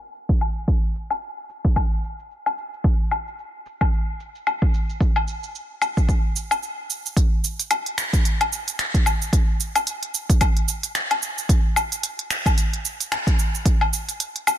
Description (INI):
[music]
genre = downtempo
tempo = 111 BPM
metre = 4/4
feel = swing 58% on 16ths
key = none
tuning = none
[part]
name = deep house drum kit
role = drums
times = 0.0-14.6 s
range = finger snaps, hi-hat, shaker, woodblock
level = -24 LUFS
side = left 1 dB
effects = soft clipping on snare
[part]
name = electronic kick drum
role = drums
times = 0.3-13.8 s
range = none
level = -19 LUFS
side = equal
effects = none
[sound]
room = little or no reverb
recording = dense, heavily limited modern master, low-pass filter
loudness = -20 LUFS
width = side -11 dB against mid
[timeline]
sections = 0.0-7.2 A section; 7.2-14.6 B section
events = filter sweep 0.0-7.2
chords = none